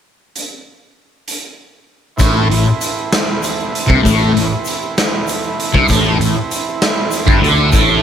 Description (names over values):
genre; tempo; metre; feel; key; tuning
psychedelic rock; 65 BPM (dotted quarters); 6/8; straight; A minor; A4 = 439 Hz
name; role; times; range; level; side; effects
raw garage drum kit; drums; 0.4-7.9 s; hi-hat, kick drum, snare drum; -17 LUFS; equal; none
combo organ; sustained chords; 2.2-8.0 s; E3 to E4; -22 LUFS; right 5 dB; lush chorus
thick fuzz guitar; riff; 2.2-8.0 s; G2 to D3; -14 LUFS; left 1 dB; distortion, phaser
picked electric bass; bass; 2.2-8.0 s; G1 to D2; -17 LUFS; equal; none
egg shaker; percussion; 2.2-8.0 s; none; -30 LUFS; left 13 dB; none
room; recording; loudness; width
light reverb, small room ambience; none; -12 LUFS; side -9 dB against mid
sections
0.4-2.2 A section; 2.2-8.0 B section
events
none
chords
0.4 N.C.; 2.2 Amadd9